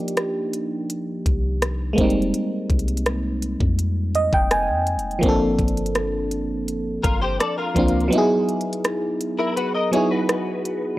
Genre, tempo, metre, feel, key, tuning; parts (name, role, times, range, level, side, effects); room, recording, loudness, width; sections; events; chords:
contemporary R&B; 83 BPM; 4/4; straight; C minor; A4 = 440 Hz
FM electric piano; accompaniment; 0.0-11.0 s; F3 to Ab5; -22 LUFS; right 1 dB; chorus
trap drum kit; drums; 0.1-10.8 s; hi-hat, kick drum, rim click; -23 LUFS; equal
soft 808-style bass; bass; 1.3-8.1 s; F1 to F2; -25 LUFS; equal
direct-recorded clean electric guitar; arpeggios; 7.0-11.0 s; E4 to D#5; -25 LUFS; left 2 dB; ensemble chorus, analog delay
little or no reverb; dry, gritty hardware recording, transformer saturation; -19 LUFS; side -16 dB against mid
0.0-11.0 A section
break 0.0-0.9; FM electric piano fill 3.8-5.2; kick muted 8.1-11.0
0.0 Cm11; 2.0 Fm11; 5.2 Gm11; 8.1 F#13sus4